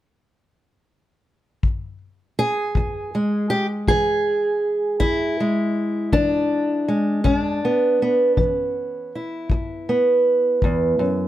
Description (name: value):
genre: acoustic country blues, solo or duo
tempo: 53 BPM (dotted quarters)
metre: 12/8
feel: straight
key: E mixolydian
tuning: A4 = 440 Hz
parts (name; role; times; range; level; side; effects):
- kick drum; drums; 1.6-10.8 s; none; -23 LUFS; left 2 dB; none
- fingerpicked old ladder-braced acoustic guitar; melody; 2.4-11.3 s; E2 to G#4; -19 LUFS; right 1 dB; none
room: light reverb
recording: none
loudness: -18 LUFS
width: side -13 dB against mid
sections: 0.0-2.8 A section; 2.8-11.3 B section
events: none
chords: 0.0 N.C.; 2.8 E7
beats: 0.52 1.64 | 2.76 3.88 5.00 6.13 | 7.25 8.37 9.50 10.62